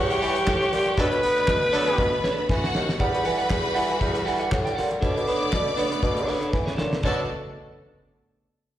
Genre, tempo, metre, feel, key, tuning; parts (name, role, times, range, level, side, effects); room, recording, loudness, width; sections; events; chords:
disco; 119 BPM; 4/4; swing 56% on 16ths; B minor; A4 = 440 Hz
growling alto saxophone; melody; 0.0-2.5 s; G4 to B4; -23 LUFS; equal; slapback echo
clear studio string section; second line; 0.0-7.3 s; F#4 to D6; -29 LUFS; equal; slapback echo
clear studio string section; sustained chords; 0.0-7.3 s; C#3 to F#5; -31 LUFS; left 1 dB
mellow bassoon; bass; 0.0-7.3 s; D#2 to B3; -27 LUFS; equal
clean electric guitar; accompaniment; 0.1-7.2 s; D4 to G5; -30 LUFS; right 3 dB; plate reverb, slapback echo
damped 70s drum kit; drums; 0.1-7.2 s; crash cymbal, handclaps, hi-hat, kick drum, snare drum; -28 LUFS; equal
warm horn section; stabs; 1.0-2.1, 7.0-7.2 s; F#3 to A4; -30 LUFS; left 1 dB; plate reverb, slapback echo
light reverb; live gig heard through the venue's PA, recital hall reverb; -21 LUFS; side -12 dB against mid
0.0-3.0 A section; 3.0-7.0 B section; 7.0-8.8 C section
band accent 1.0-3.0; drum fill 2.0-3.0, 6.5-7.0
0.0 Em9; 1.0 Bm9; 3.0 Em9; 5.0 Bm9